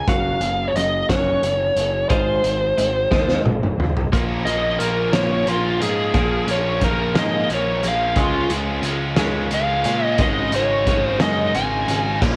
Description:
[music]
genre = quiet-loud alternative rock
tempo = 59 BPM (dotted quarters)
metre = 6/8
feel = straight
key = Bb minor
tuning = A4 = 441 Hz
[part]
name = bluesy overdriven lead guitar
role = melody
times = 0.0-12.2 s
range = F4 to Ab5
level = -24 LUFS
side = equal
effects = distortion, cassette tape
[part]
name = twelve-string electric guitar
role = arpeggios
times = 0.1-12.4 s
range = Ab2 to Gb4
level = -29 LUFS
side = equal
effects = phaser, cassette tape
[part]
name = fuzz picked electric bass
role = bass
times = 0.1-12.4 s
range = Gb1 to Bb2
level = -28 LUFS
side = equal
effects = overdrive
[part]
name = loose indie drum kit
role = drums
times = 0.1-12.4 s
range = hi-hat, kick drum, snare drum, toms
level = -26 LUFS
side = equal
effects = cassette tape
[part]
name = distorted electric guitar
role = riff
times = 4.1-12.4 s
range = Ab2 to Eb4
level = -28 LUFS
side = equal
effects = overdrive, cassette tape
[part]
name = crunchy overdriven guitar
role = riff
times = 12.2-12.4 s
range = Bb2 to Db4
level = -26 LUFS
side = equal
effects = phaser, cassette tape
[sound]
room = light reverb, small room ambience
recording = home recording on cassette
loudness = -20 LUFS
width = mono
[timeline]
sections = 0.0-4.1 A section; 4.1-12.4 B section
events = drum fill 3.1-4.1; lead electric guitar solo 4.1-12.4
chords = 0.1 Gb5; 2.1 Ab6; 4.1 Bbm; 8.2 Db; 10.2 Absus4

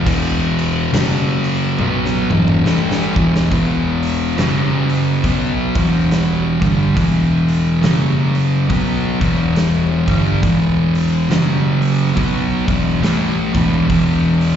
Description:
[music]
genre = stoner and doom metal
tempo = 69 BPM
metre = 4/4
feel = swing 59% on 8ths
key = E dorian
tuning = A4 = 440 Hz
[part]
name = thick fuzz guitar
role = riff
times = 0.0-14.6 s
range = E2 to B3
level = -15 LUFS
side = equal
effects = distortion
[part]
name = picked electric bass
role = bass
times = 0.0-14.6 s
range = E1 to B1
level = -22 LUFS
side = equal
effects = overdrive
[part]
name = big rock drum kit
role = drums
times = 0.1-14.6 s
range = crash cymbal, hi-hat, kick drum, snare drum, toms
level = -23 LUFS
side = equal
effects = none
[sound]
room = studio ambience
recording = live gig heard through the venue's PA, recital hall reverb, nothing above 7.6 kHz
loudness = -14 LUFS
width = side -9 dB against mid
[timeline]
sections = 0.0-3.5 A section; 3.5-14.6 B section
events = drum fill 1.8-3.5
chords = 0.0 E5; 0.9 F#5; 1.8 E5; 4.4 F#5; 5.2 Em; 7.8 F#5; 8.7 Em; 11.3 F#5; 12.2 E5

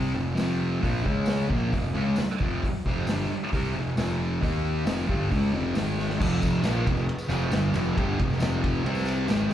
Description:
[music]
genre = garage rock duo or trio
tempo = 134 BPM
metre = 4/4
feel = straight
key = F minor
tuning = A4 = 440 Hz
[part]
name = thick fuzz guitar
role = riff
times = 0.0-9.5 s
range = F2 to Eb4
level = -26 LUFS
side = equal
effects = distortion, slapback echo
[part]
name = fuzz picked electric bass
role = bass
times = 0.0-9.5 s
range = F1 to Eb2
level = -29 LUFS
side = equal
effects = overdrive, tube saturation
[part]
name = vintage drum kit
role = drums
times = 0.4-9.4 s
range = crash cymbal, hi-hat, kick drum, ride cymbal, snare drum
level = -30 LUFS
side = equal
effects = none
[part]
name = tambourine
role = percussion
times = 0.4-9.5 s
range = none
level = -47 LUFS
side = left 2 dB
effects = none
[sound]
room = light reverb, studio ambience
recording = live gig heard through the venue's PA, club reverb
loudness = -23 LUFS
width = side -11 dB against mid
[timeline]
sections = 0.0-6.2 A section; 6.2-9.5 B section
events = drum fill 6.0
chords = 0.0 F5; 1.0 Db5; 1.5 F5; 4.4 Eb5; 4.9 Fm; 5.7 Ab5; 6.2 F5; 8.9 C5

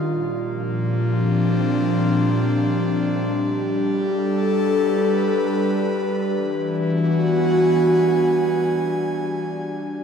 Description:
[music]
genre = ambient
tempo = free time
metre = none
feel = none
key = unclear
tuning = A4 = 438 Hz
[part]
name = airy breathy pad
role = sustained chords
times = 0.0-10.0 s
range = Bb2 to G#5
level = -19 LUFS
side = equal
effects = chorus, shimmer reverb
[part]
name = analog drone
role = drone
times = 0.0-10.0 s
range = G3 to D4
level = -30 LUFS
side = left 2 dB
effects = chorus
[sound]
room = wet spring reverb, RT60 2.4 s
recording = none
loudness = -18 LUFS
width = side -7 dB against mid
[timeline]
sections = 0.0-10.0 A section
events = fade-in on synth drone 0.0-10.0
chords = 0.1 Bb; 3.2 G; 6.3 Eadd9; 9.4 Ebmaj7 (rootless)

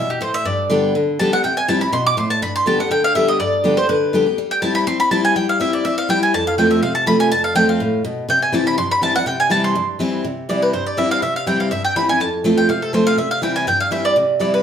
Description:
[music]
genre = bluegrass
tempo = 245 BPM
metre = 4/4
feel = swing 53% on 8ths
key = C major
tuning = A4 = 440 Hz
[part]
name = mandolin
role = melody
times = 0.0-14.6 s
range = G4 to D6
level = -18 LUFS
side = right 1 dB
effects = none
[part]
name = picked steel-string acoustic guitar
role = accompaniment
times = 0.0-14.6 s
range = F2 to G4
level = -18 LUFS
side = left 1 dB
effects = none
[sound]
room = wet studio reverb, RT60 0.8 s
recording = heard from further back in the room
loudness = -15 LUFS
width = side -8 dB against mid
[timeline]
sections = 0.0-2.4 A section; 2.4-10.2 A section; 10.2-14.6 B section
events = mandolin solo 0.0-10.2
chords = 0.5 G; 1.4 C; 2.4 G; 4.4 C/G; 6.3 F; 8.3 C; 12.2 F; 13.2 C

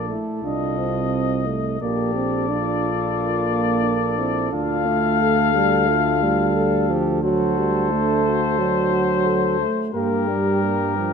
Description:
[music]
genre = classical, brass quintet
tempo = 88 BPM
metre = 4/4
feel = straight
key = unclear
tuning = A4 = 440 Hz
[part]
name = warm trumpet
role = melody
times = 0.0-11.1 s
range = Bb4 to F5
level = -24 LUFS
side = left 11 dB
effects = none
[part]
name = warm flugelhorn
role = second line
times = 0.0-11.1 s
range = G4 to A4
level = -29 LUFS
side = right 8 dB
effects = none
[part]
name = dark euphonium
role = accompaniment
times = 0.0-11.1 s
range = F3 to D4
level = -23 LUFS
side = right 4 dB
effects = none
[part]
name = warm French horn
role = accompaniment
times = 0.0-11.1 s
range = Bb3 to A4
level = -27 LUFS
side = left 7 dB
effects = none
[part]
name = mellow tuba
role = bass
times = 0.0-11.1 s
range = Bb1 to G2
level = -25 LUFS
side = right 4 dB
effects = none
[sound]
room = light reverb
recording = close, detailed microphones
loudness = -18 LUFS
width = side -6 dB against mid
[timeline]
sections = 0.0-11.1 A section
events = none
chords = 0.4 F7/C; 1.8 Bbmaj7; 4.5 Dm; 7.2 D7; 9.9 Gm

